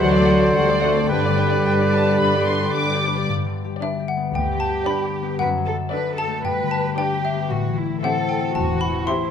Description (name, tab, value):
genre	cinematic, playful, whimsical film cue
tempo	114 BPM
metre	4/4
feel	straight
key	G major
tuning	A4 = 442 Hz
part	muted studio violin section	melody	0.0-9.3 s	B4 to D6	-27 LUFS	equal	none
part	clear oboe	second line	0.0-3.0 s	B4 to C5	-25 LUFS	right 2 dB	none
part	mellow clarinet	second line	0.0-3.0 s	G4 to A4	-27 LUFS	right 1 dB	none
part	mellow hollow silver concert flute	second line	0.0-3.0 s	D5	-26 LUFS	equal	none
part	muted studio violin section	second line	0.0-9.3 s	G4 to D5	-31 LUFS	left 3 dB	none
part	dark bassoon	accompaniment	0.0-3.0 s	D3	-26 LUFS	right 4 dB	none
part	muted studio viola section	accompaniment	0.0-9.3 s	C4 to A4	-32 LUFS	equal	none
part	dark French horn section	sustained chords	0.0-3.0 s	F#3 to A3	-24 LUFS	left 3 dB	none
part	concert harp	arpeggios	0.0-9.3 s	F#2 to D5	-25 LUFS	left 9 dB	none
part	muted studio cello section	bass	0.0-9.3 s	F#3 to B4	-26 LUFS	right 2 dB	none
part	muted studio double bass section	bass	0.0-9.0 s	E1 to G2	-27 LUFS	right 4 dB	none
part	xylophone with rubber mallets	melody	3.8-9.3 s	E5 to C6	-25 LUFS	left 2 dB	none
room	moderate scoring stage reverb, RT60 1.7 s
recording	none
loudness	-18 LUFS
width	side -8 dB against mid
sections	0.0-3.3 A section; 3.3-9.3 B section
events	none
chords	0.0 D7; 1.1 G; 5.4 D/F#; 6.5 G; 7.5 Am7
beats	0.03 0.56 | 1.11 1.66 2.20 2.75 | 3.29 3.82 4.35 4.88 | 5.40 5.93 6.46 6.98 | 7.51 8.03 8.55 9.08